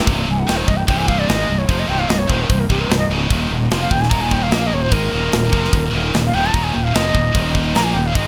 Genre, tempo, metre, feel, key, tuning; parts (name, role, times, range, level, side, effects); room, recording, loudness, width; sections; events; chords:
heavy metal; 148 BPM; 4/4; straight; C phrygian; A4 = 440 Hz
heavy high-gain guitar; riff; 0.0-8.3 s; C2 to Bb3; -25 LUFS; equal; distortion
scooped high-gain guitar; riff; 0.0-8.3 s; C2 to Bb3; -26 LUFS; equal; distortion
fuzz fingered electric bass; bass; 0.1-8.3 s; C1 to Bb1; -23 LUFS; equal; overdrive
tight metal drum kit; drums; 0.1-8.3 s; hi-hat, kick drum, snare drum; -23 LUFS; equal; gated reverb
breathy shakuhachi; melody; 0.3-8.3 s; G4 to Bb5; -25 LUFS; equal; delay
light reverb, small room ambience; bright 1980s-style digital production; -17 LUFS; mono
0.1-8.3 A section
shakuhachi solo 0.1-8.3
0.1 Cm; 3.3 Eb5